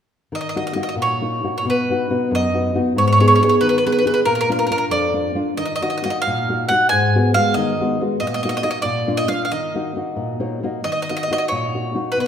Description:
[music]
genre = italian folk, Italian serenade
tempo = 92 BPM (dotted quarters)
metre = 6/8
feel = rubato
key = Eb minor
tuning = A4 = 440 Hz
[part]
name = bowl-back mandolin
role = melody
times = 0.3-12.2 s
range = Bb4 to Ab5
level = -20 LUFS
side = right 1 dB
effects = none
[part]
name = nylon-string guitar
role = accompaniment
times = 0.3-12.3 s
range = F2 to Eb5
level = -20 LUFS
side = left 1 dB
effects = none
[sound]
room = wet recital hall reverb, RT60 1.5 s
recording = minimal, uncompressed stereo recording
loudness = -17 LUFS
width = side -8 dB against mid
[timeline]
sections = 0.3-10.8 A section; 10.8-12.3 A section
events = nylon-string guitar fill 10.2-10.8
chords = 0.3 Ebm; 1.6 B; 2.9 Abm; 4.2 Bb; 5.6 Ebm; 6.9 Abm7; 8.2 Ebm/Bb; 8.8 Bb; 9.5 Ebm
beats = | 0.30 0.98 | 1.64 2.30 | 2.95 3.60 | 4.25 4.90 | 5.57 6.24 | 6.90 7.55 | 8.19 8.84 | 9.49 10.16 | 10.84 11.50 | 12.16

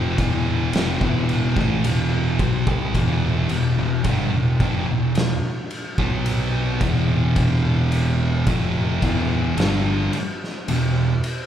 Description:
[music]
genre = stoner and doom metal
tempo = 54 BPM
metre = 4/4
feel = straight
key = E minor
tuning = A4 = 440 Hz
[part]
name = thick fuzz guitar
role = riff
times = 0.0-11.1 s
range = E2 to B3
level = -25 LUFS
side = left 5 dB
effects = distortion
[part]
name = thick fuzz guitar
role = riff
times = 0.0-11.1 s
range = E2 to B3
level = -23 LUFS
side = right 5 dB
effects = distortion
[part]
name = fuzz fingered electric bass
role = bass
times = 0.0-11.2 s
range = E1 to C2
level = -26 LUFS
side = equal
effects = overdrive
[part]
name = oversized low-tuned drum kit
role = drums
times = 0.2-11.5 s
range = kick drum, ride cymbal, snare drum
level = -24 LUFS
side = equal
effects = none
[sound]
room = moderate large studio reverb, RT60 1.4 s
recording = band playing live in one room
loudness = -18 LUFS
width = side -10 dB against mid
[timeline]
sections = 0.0-11.5 A section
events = none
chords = 0.0 Em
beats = 0.74 1.85 | 2.95 4.06 5.16 6.27 | 7.37 8.48 9.58 10.69

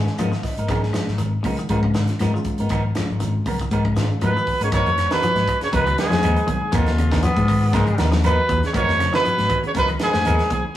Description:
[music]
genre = afrobeat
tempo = 119 BPM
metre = 4/4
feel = swing 54% on 16ths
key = G# dorian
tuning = A4 = 445 Hz
[part]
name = barky reed electric piano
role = accompaniment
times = 0.0-4.4 s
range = G#3 to G#5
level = -29 LUFS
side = equal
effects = overdrive
[part]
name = electric guitar at the edge of break-up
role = arpeggios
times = 0.0-10.7 s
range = C#3 to E#3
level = -28 LUFS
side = left 1 dB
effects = warbly pitch drift
[part]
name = hollow-body short-scale fingered electric bass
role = bass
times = 0.0-10.6 s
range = E#1 to G#2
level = -22 LUFS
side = left 1 dB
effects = none
[part]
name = tight funk drum kit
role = drums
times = 0.1-10.6 s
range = hi-hat, kick drum, snare drum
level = -27 LUFS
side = equal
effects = none
[part]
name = shekere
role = percussion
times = 0.1-10.7 s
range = none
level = -31 LUFS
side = left 2 dB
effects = none
[part]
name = semi-hollow electric guitar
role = stabs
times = 0.2-10.7 s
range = E#3 to A#4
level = -28 LUFS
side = right 2 dB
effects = tape echo
[part]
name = claves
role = percussion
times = 0.2-10.4 s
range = none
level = -41 LUFS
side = left 1 dB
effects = none
[part]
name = trombone with bucket mute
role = second line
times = 4.2-10.6 s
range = E#2 to E#3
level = -30 LUFS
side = right 2 dB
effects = none
[part]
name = clear trumpet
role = melody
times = 4.3-10.6 s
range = E#4 to C#5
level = -21 LUFS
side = right 1 dB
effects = tape echo
[part]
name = raspy baritone saxophone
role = second line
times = 7.2-8.1 s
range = G#3 to B3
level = -24 LUFS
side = equal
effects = none
[sound]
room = wet stone room reverb, RT60 0.9 s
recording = rough rehearsal-room recording, small room ambience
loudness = -17 LUFS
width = side -12 dB against mid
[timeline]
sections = 0.0-4.7 A section; 4.7-10.8 B section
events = reed electric piano fill 0.0-0.7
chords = 0.0 G#m69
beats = 0.18 | 0.69 1.20 1.70 2.20 | 2.71 3.21 3.72 4.22 | 4.72 5.23 5.73 6.24 | 6.74 7.24 7.74 8.25 | 8.75 9.25 9.76 10.26

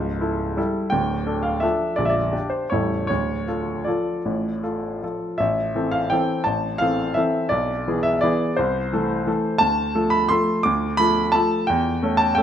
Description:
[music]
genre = classical, piano waltz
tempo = 152-184 BPM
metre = 3/4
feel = rubato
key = D minor, A minor from 5.4 s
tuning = A4 = 440 Hz
[part]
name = clear baby grand piano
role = solo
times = 0.0-12.4 s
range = A0 to D6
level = -20 LUFS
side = equal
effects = none
[sound]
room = moderate recital hall reverb, RT60 1.8 s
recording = close, detailed microphones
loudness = -20 LUFS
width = side -9 dB against mid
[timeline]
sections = 0.0-5.4 A section; 5.4-12.4 B section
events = none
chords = 0.0 A7/C#; 0.9 Dm; 2.0 Gm/Bb; 2.7 A7; 3.1 Dm; 5.4 Am; 7.5 E7/B; 8.6 Am/C; 9.6 Dm; 11.7 A7/E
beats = 0.21 0.57 | 0.93 1.27 1.64 | 1.99 2.34 2.72 | 3.10 3.48 3.87 | 4.25 4.63 5.03 | 5.40 5.76 6.12 | 6.46 6.81 7.17 | 7.52 7.87 8.23 | 8.59 8.93 9.28 | 9.61 9.96 10.31 | 10.65 10.99 11.35 | 11.68 12.02 12.37

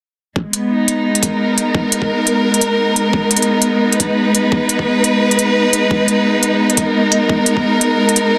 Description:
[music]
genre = half-time drum and bass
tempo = 173 BPM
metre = 4/4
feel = swing 57% on 16ths, half-time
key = G# minor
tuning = A4 = 440 Hz
[part]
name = rich chamber string section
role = sustained chords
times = 0.4-8.4 s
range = G#3 to B4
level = -16 LUFS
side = equal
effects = sidechain pumping
[part]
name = electronic kick drum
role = drums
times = 0.4-7.6 s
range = none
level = -22 LUFS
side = equal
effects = high-pass filter on kick
[part]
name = electronic hi-hat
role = drums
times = 0.5-8.2 s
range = none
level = -18 LUFS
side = equal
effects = none
[sound]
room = moderate echo chamber reverb, RT60 1.3 s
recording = dense, heavily limited modern master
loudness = -15 LUFS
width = mono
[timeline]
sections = 0.4-8.4 A section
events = none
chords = 0.4 G#madd9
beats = | 0.36 0.71 1.05 1.40 | 1.75 2.09 2.44 2.79 | 3.13 3.48 3.83 4.17 | 4.52 4.87 5.21 5.56 | 5.91 6.26 6.60 6.95 | 7.30 7.64 7.99 8.34

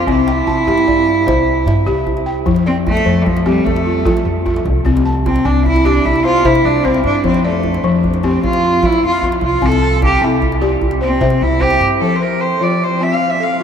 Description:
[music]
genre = west african traditional, West African string and xylophone music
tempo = 100 BPM (dotted quarters)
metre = 12/8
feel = straight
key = F major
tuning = A4 = 439 Hz
[part]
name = rich cello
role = melody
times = 0.0-13.6 s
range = F3 to F5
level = -15 LUFS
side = right 2 dB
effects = none
[part]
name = balafon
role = arpeggios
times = 0.0-13.6 s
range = F3 to A5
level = -17 LUFS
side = left 3 dB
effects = none
[part]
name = upright bass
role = bass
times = 0.0-12.0 s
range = C2 to F3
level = -19 LUFS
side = equal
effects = none
[part]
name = djembe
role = percussion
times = 0.1-12.0 s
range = none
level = -23 LUFS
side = right 1 dB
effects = none
[sound]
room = wet cathedral reverb, RT60 6.8 s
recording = in a vast, echoing space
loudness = -12 LUFS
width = side -8 dB against mid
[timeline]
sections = 0.0-2.5 A section; 2.5-12.0 B section; 12.0-13.6 C section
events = cello solo 2.5-12.0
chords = 0.1 C; 2.5 F; 4.9 C; 7.2 F5; 9.6 C; 12.0 F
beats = | 0.07 0.67 1.27 1.87 | 2.47 3.06 3.66 4.26 | 4.86 5.45 6.05 6.65 | 7.24 7.84 8.44 9.03 | 9.63 10.22 10.82 11.41 | 12.01 12.61 13.21

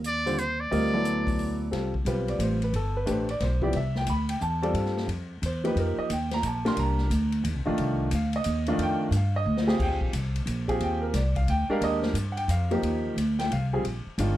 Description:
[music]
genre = modal jazz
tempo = 178 BPM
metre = 3/4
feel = swing 65% on 8ths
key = Eb major from 9.8 s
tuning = A4 = 440 Hz
[part]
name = upright bass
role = bass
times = 0.0-14.4 s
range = G1 to G2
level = -27 LUFS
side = equal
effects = none
[part]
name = swinging big-band drum kit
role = drums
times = 0.0-14.3 s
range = crash cymbal, hi-hat, kick drum, ride cymbal, snare drum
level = -35 LUFS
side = left 2 dB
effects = none
[part]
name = trumpet with metal mute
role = melody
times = 0.1-1.6 s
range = C5 to D5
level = -29 LUFS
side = equal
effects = none
[part]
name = clear grand piano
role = accompaniment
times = 0.3-14.4 s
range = D3 to C6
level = -28 LUFS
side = equal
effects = none
[sound]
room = light reverb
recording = dark, warm production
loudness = -24 LUFS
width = side -14 dB against mid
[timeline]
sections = 0.0-1.7 A section; 1.7-9.8 B section; 9.8-14.4 B section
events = drum fill 9.5-9.8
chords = 0.0 Ebmaj9; 0.7 D7; 1.7 G13sus4; 5.8 F13sus4; 9.8 Ebmaj9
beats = 0.04 0.37 | 0.71 1.05 1.38 | 1.72 2.06 2.39 | 2.73 3.07 3.40 | 3.74 4.08 4.41 | 4.75 5.08 5.42 | 5.76 6.09 6.43 | 6.77 7.10 7.44 | 7.78 8.11 8.45 | 8.78 9.12 9.46 | 9.79 10.13 10.47 | 10.80 11.14 11.48 | 11.81 12.15 12.48 | 12.82 13.16 13.49 | 13.83 14.17

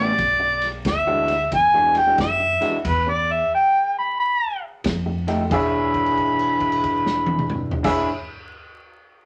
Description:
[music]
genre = electric blues shuffle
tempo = 90 BPM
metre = 4/4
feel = swing 65% on 8ths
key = E mixolydian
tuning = A4 = 440 Hz
[part]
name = mellow harmonica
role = melody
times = 0.0-8.1 s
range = B4 to B5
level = -21 LUFS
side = equal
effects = overdrive
[part]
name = electric guitar through a small old amp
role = riff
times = 0.0-8.1 s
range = A2 to C#5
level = -28 LUFS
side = equal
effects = none
[part]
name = upright bass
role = bass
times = 0.0-8.1 s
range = E1 to F#2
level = -32 LUFS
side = equal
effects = none
[part]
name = vintage drum kit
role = drums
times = 0.2-8.0 s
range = crash cymbal, kick drum, ride cymbal, snare drum, toms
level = -31 LUFS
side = equal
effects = vintage 12-bit sampler grit
[part]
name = bright upright piano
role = second line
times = 5.5-8.1 s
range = G#4 to E5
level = -30 LUFS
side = equal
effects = none
[sound]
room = wet club reverb, RT60 0.7 s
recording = vinyl crackle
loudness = -20 LUFS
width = mono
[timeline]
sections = 0.0-5.5 A section; 5.5-8.2 B section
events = stop 2.8-4.8; held note 5.5-7.8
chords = 0.2 E9; 2.8 E5; 4.8 F9; 5.5 E6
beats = | 0.19 0.86 1.52 2.19 | 2.85 3.51 4.18 4.84 | 5.51 6.17 6.84 7.50

